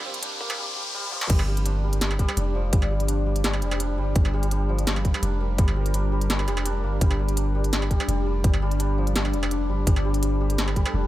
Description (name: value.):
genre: half-time drum and bass.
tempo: 168 BPM.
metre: 4/4.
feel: half-time.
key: G minor.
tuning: A4 = 440 Hz.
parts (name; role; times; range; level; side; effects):
deep dark ambient pad; sustained chords; 0.0-11.1 s; G3 to F5; -32 LUFS; left 2 dB; chorus, built-in reverb, sidechain pumping.
santur; arpeggios; 0.0-11.1 s; F3 to G4; -32 LUFS; right 1 dB; vintage 12-bit sampler grit, digital delay.
long sustained 808-style bass; bass; 0.0-11.1 s; F1 to G1; -24 LUFS; equal; none.
riser; sound effects; 0.0-1.3 s; none; -31 LUFS; left 1 dB; none.
industrial drum kit; drums; 0.1-10.9 s; crash cymbal, hi-hat, snare drum, struck metal, toms; -29 LUFS; right 1 dB; high-pass filter on hats, studio ambience, high-pass filter on perc, high-pass filter on snare, high-pass filter on toms, high-pass filter on cymbals.
electronic kick drum; drums; 0.4-10.8 s; none; -21 LUFS; equal; high-pass filter on kick, studio ambience, high-pass filter on room.
room: digital ambience.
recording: high-pass filter.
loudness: -21 LUFS.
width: side -15 dB against mid.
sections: 0.0-1.3 A section; 1.3-11.1 B section.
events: build-up 0.0-1.3; riser 0.0-1.3; drum fill 1.1; drop 1.3-11.1.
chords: 0.0 G5.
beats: 0.23 0.58 0.94 | 1.30 1.66 2.01 2.37 | 2.73 3.08 3.44 3.80 | 4.16 4.51 4.87 5.23 | 5.58 5.94 6.30 6.66 | 7.01 7.37 7.73 8.09 | 8.44 8.80 9.16 9.51 | 9.87 10.23 10.59 10.94.